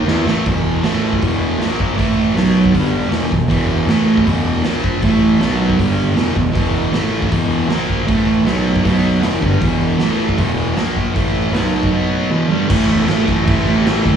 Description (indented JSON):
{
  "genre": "garage rock duo or trio",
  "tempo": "157 BPM",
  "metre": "4/4",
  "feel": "straight",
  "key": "unclear",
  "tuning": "A4 = 440 Hz",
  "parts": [
    { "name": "thick fuzz guitar", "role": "riff", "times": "0.0-14.2 s", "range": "E2 to E4", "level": "-16 LUFS", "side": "right 1 dB", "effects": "distortion, slapback echo" },
    { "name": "fuzz fingered electric bass", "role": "bass", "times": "0.0-14.2 s", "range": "E1 to E2", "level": "-19 LUFS", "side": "right 1 dB", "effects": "overdrive" },
    { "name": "raw garage drum kit", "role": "drums", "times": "0.1-14.1 s", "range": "crash cymbal, hi-hat, kick drum, snare drum", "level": "-20 LUFS", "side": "right 1 dB", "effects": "none" }
  ],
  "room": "light reverb, studio reverb",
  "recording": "live gig heard through the venue's PA, club reverb, studio ambience",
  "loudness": "-13 LUFS",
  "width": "side -8 dB against mid",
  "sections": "0.5-12.7 A section; 12.7-14.2 B section",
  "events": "drum fill 0.0-0.5",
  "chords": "0.1 A5; 0.5 E5; 0.8 A5; 1.2 E5; 1.6 A#5; 2.0 A5; 2.4 B5; 2.7 G5; 3.1 E5; 3.9 A5; 4.3 E5; 4.6 A#5; 5.0 A5; 5.4 B5; 5.8 G5; 6.2 E5; 6.9 A5; 7.3 E5; 7.7 A#5; 8.1 A5; 8.5 B5; 9.2 E5; 10.0 A5; 10.4 E5; 10.8 A#5; 11.1 A5; 11.5 B5; 12.3 E5; 12.7 A5",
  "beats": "0.07 | 0.46 0.84 1.22 1.60 | 1.98 2.36 2.74 3.12 | 3.50 3.88 4.26 4.64 | 5.02 5.40 5.78 6.16 | 6.54 6.92 7.30 7.69 | 8.07 8.45 8.84 9.22 | 9.61 9.99 10.38 10.76 | 11.15 11.54 11.92 12.31 | 12.69 13.08 13.47 13.85"
}